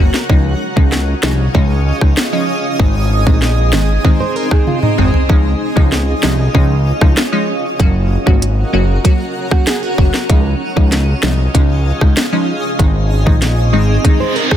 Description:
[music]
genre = dancehall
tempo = 96 BPM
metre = 4/4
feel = straight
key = Db major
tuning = A4 = 439 Hz
[part]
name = wavetable chord stab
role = accompaniment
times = 0.0-14.6 s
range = Eb3 to Gb4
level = -19 LUFS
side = equal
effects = none
[part]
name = granular cloud pad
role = sustained chords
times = 0.0-14.6 s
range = C4 to Gb5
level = -20 LUFS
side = right 1 dB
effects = built-in reverb, sidechain pumping
[part]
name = fat analog bass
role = bass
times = 0.0-14.0 s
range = Gb1 to Db2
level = -15 LUFS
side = equal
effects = none
[part]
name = island pop drum kit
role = drums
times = 0.1-14.6 s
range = hi-hat, kick drum, rim click, snare drum, toms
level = -13 LUFS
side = equal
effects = none
[part]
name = nylon-string guitar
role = arpeggios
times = 4.2-5.3, 9.5-10.3, 14.2-14.6 s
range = Eb4 to C5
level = -20 LUFS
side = right 8 dB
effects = none
[part]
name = reverse cymbal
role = sound effects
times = 14.2-14.6 s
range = none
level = -18 LUFS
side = right 4 dB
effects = none
[sound]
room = little or no reverb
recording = dense, heavily limited modern master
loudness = -11 LUFS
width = side -10 dB against mid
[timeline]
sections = 0.0-14.6 A section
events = drum fill 4.7-5.3; reverse cymbal 14.2-14.6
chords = 0.3 Dbadd9; 2.8 Ab; 5.3 Dbadd9; 7.8 Gb; 10.3 Dbadd9; 12.8 Ab

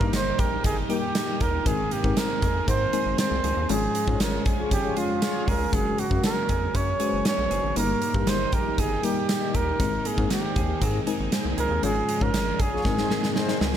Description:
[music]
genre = 1980s-style pop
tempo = 118 BPM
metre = 4/4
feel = straight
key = Ab major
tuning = A4 = 445 Hz
[part]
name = breathy flugelhorn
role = melody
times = 0.0-13.6 s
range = F4 to Db5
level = -28 LUFS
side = right 3 dB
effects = none
[part]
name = FM electric piano with tremolo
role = accompaniment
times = 0.0-13.8 s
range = G2 to Db5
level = -30 LUFS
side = left 6 dB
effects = none
[part]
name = string machine, full ensemble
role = sustained chords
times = 0.0-13.8 s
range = Ab2 to Ab4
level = -34 LUFS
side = right 1 dB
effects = phaser, ensemble chorus
[part]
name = direct-recorded clean electric guitar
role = riff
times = 0.0-13.8 s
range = Eb3 to Ab4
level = -34 LUFS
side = right 4 dB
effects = analog chorus, ping-pong delay
[part]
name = rubbery square bass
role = bass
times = 0.0-13.8 s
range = Gb1 to Ab2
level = -30 LUFS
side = equal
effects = none
[part]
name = huge arena drum kit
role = drums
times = 0.0-13.8 s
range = hi-hat, kick drum, snare drum, tambourine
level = -27 LUFS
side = equal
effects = gated reverb
[part]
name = mellow synth brass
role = stabs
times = 4.6-5.4, 12.7-13.6 s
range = Eb4 to Db5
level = -33 LUFS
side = left 7 dB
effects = chorus
[sound]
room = light reverb, studio ambience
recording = none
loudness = -22 LUFS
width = side -10 dB against mid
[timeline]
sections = 0.0-13.8 A section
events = band accent 3.7-5.7, 11.8-13.8; drum fill 12.8-13.8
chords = 0.0 Eb/G; 1.7 Abadd9; 3.7 Db/Ab; 5.7 Gbadd9; 7.8 Eb/G; 9.8 Abadd9; 11.8 Db/Ab; 12.8 Abadd9

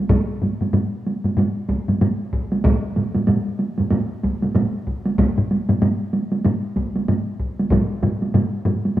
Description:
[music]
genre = japanese traditional, taiko drum ensemble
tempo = 95 BPM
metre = 4/4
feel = swing 60% on 16ths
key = none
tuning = none
[part]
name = solo taiko drums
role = percussion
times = 0.1-9.0 s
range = none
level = -21 LUFS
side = right 2 dB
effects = none
[part]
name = solo taiko drums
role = percussion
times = 0.1-9.0 s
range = none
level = -22 LUFS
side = left 2 dB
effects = none
[part]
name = solo taiko drums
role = percussion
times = 0.1-7.9 s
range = none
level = -24 LUFS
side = equal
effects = none
[part]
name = taiko ensemble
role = percussion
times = 2.7-9.0 s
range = none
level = -24 LUFS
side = right 2 dB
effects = none
[sound]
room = moderate lush hall reverb, RT60 2.4 s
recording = rough home demo mix, small room ambience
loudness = -18 LUFS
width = side -14 dB against mid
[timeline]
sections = 0.0-9.0 A section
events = none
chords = none

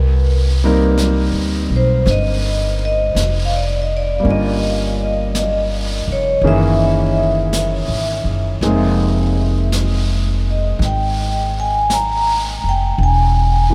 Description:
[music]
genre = jazz ballad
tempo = 55 BPM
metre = 4/4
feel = swing 68% on 8ths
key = unclear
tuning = A4 = 439 Hz
[part]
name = upright bass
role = bass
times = 0.0-13.7 s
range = E1 to D2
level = -20 LUFS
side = equal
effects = none
[part]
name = clear concert grand piano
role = accompaniment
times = 0.6-13.7 s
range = Eb3 to Bb4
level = -23 LUFS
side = equal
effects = none
[part]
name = jazz brush drum kit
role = drums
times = 1.0-13.7 s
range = brushed snare drum, hi-hat, snare drum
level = -30 LUFS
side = equal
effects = none
[part]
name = vibraphone with medium mallets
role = melody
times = 1.8-13.7 s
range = C5 to Bb5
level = -22 LUFS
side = equal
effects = diffuse ambient delay
[sound]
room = moderate huge ambient reverb, RT60 9.1 s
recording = dreamy mix soaked in reverb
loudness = -17 LUFS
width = mono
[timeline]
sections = 0.0-13.7 A section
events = none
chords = 0.0 Cm7; 4.2 Gm7b5; 6.4 Gb13; 8.6 Fm7; 13.0 E

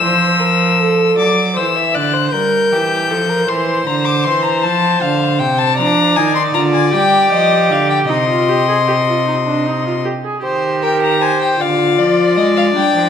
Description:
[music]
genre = classical, baroque-style fugue for string quartet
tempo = 52 BPM (dotted quarters)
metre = 6/8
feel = straight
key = C minor from 5.8 s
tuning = A4 = 440 Hz
[part]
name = warm violin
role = melody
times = 0.0-13.1 s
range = D5 to G6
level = -16 LUFS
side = left 7 dB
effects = none
[part]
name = warm viola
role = accompaniment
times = 0.0-1.2, 5.8-13.1 s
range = D4 to C5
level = -17 LUFS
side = right 1 dB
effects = none
[part]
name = rich cello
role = bass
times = 0.0-13.1 s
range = C3 to Ab3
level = -19 LUFS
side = right 4 dB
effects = none
[part]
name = rich violin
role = second line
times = 1.2-13.1 s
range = G4 to E5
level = -18 LUFS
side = left 2 dB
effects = none
[sound]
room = wet recital hall reverb, RT60 1.6 s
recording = minimal, uncompressed stereo recording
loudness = -12 LUFS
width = side -8 dB against mid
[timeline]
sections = 0.0-1.2 A section; 1.2-10.4 B section; 10.4-13.1 C section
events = none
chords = 0.0 F; 1.2 D7; 2.3 Gm; 3.5 C7; 4.6 F; 5.8 Ddim; 6.9 G5; 8.1 Cm; 10.4 Cm/Eb; 11.6 Ddim

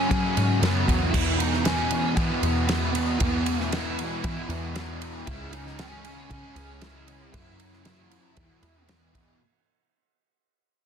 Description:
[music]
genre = rock, shoegaze and dream pop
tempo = 116 BPM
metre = 4/4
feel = straight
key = E major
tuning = A4 = 439 Hz
[part]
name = bluesy overdriven lead guitar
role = melody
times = 0.0-8.8 s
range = B3 to E4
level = -31 LUFS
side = equal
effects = distortion, digital delay
[part]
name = fuzz guitar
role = riff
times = 0.0-9.4 s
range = E2 to C#4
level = -29 LUFS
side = equal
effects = distortion, analog chorus
[part]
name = overdriven picked electric bass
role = bass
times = 0.0-9.4 s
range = C#2 to F#3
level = -28 LUFS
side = equal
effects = none
[part]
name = loose indie drum kit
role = drums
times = 0.1-9.3 s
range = crash cymbal, kick drum, ride cymbal, snare drum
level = -29 LUFS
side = right 1 dB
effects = none
[sound]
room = small room ambience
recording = dense, heavily limited modern master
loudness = -22 LUFS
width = side -7 dB against mid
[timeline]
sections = 0.0-9.4 A section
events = fade-out 0.0-9.4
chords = 0.0 F#5; 1.1 E5; 5.3 C#m; 7.3 F#5; 8.4 E5

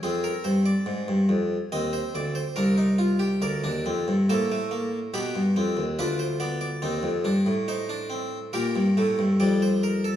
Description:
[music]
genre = classical, baroque-style 4-part fugue for harpsichord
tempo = 70 BPM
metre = 4/4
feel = straight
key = C minor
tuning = A4 = 439 Hz
[part]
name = harpsichord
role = solo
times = 0.0-10.2 s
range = C2 to Eb5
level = -22 LUFS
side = equal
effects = none
[sound]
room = wet recital hall reverb, RT60 1.4 s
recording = small room ambience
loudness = -22 LUFS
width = side -11 dB against mid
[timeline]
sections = 0.0-10.2 A section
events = none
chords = 0.0 Fm; 1.7 Cm; 3.4 Gm/D (rootless); 5.1 G7; 6.8 Cm/Eb; 8.5 Gm

